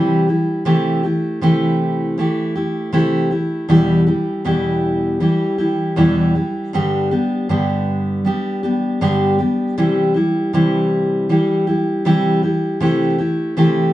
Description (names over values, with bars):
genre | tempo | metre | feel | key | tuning
pop | 79 BPM | 4/4 | swing 60% on 16ths | unclear | A4 = 438 Hz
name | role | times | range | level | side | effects
fingerpicked steel-string acoustic guitar | solo | 0.0-13.9 s | E2 to G4 | -15 LUFS | equal | none
room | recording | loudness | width
moderate small room reverb, RT60 0.5 s | band playing live in one room, nothing above 10.7 kHz | -15 LUFS | side -14 dB against mid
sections
0.0-13.9 A section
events
none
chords
0.0 C; 0.7 Am7/C; 3.7 Em; 6.7 G; 9.8 C; 12.8 Am7/C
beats
| 0.66 1.42 2.18 2.94 | 3.70 4.46 5.22 5.98 | 6.74 7.50 8.26 9.02 | 9.78 10.54 11.29 12.05 | 12.81 13.57